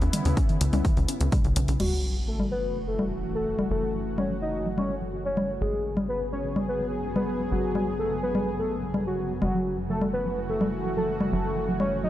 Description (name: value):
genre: melodic techno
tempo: 126 BPM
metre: 4/4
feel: straight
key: F# minor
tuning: A4 = 442 Hz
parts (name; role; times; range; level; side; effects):
- lush unison pad; sustained chords; 0.0-12.1 s; C#3 to G#4; -33 LUFS; equal; chorus, sidechain pumping
- warbly dusty pluck; arpeggios; 0.0-12.1 s; C#3 to G#4; -34 LUFS; equal; wide subtle chorus, sidechain pumping, dub echo
- tight sequencer bass; bass; 0.0-12.1 s; F#1 to D#2; -32 LUFS; equal; sidechain pumping
- swarming drone; drone; 0.1-12.1 s; F#2 to C#3; -39 LUFS; equal; built-in reverb, sidechain pumping
- punchy analog drum machine; drums; 0.0-11.9 s; congas, crash cymbal, hi-hat; -29 LUFS; left 1 dB; overdrive, sidechain pumping on hats, small room ambience, sidechain pumping on perc, sidechain pumping on cymbals
- electronic kick drum; drums; 0.4-1.4 s; none; -24 LUFS; equal; small room ambience
- fat analog lead; melody; 1.8-12.1 s; F#4 to D#5; -30 LUFS; equal; sidechain pumping, dub echo
- sub drop; sound effects; 1.8-3.7 s; none; -31 LUFS; equal; none
room: light reverb, digital ambience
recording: none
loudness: -24 LUFS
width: side -13 dB against mid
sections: 0.0-1.8 A section; 1.8-12.1 B section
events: impact 1.8-3.7; filter sweep on analog synth lead 1.8-12.1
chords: 0.0 C#m7; 1.8 F#m7; 5.6 G#m7; 9.4 F#m7